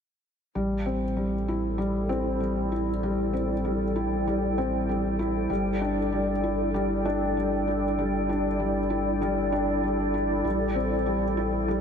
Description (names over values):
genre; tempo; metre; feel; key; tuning
piano and strings electronica; 97 BPM; 4/4; straight; unclear; A4 = 440 Hz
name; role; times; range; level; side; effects
granular cloud pad; sustained chords; 1.3-11.8 s; E4 to G5; -29 LUFS; equal; built-in reverb
felt-muted upright piano; riff; 0.6-11.8 s; G3 to E4; -27 LUFS; left 1 dB; digital delay
warm sub bass; bass; 0.6-11.8 s; G1 to A1; -32 LUFS; equal; none
room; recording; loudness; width
moderate lush hall reverb, RT60 2.6 s; none; -24 LUFS; side -7 dB against mid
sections
0.6-11.8 A section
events
none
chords
0.6 Am7; 5.5 G5; 10.5 Am7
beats
| 0.56 1.17 1.79 2.41 | 3.03 3.65 4.27 4.88 | 5.50 6.12 6.74 7.36 | 7.98 8.60 9.21 9.83 | 10.45 11.07 11.69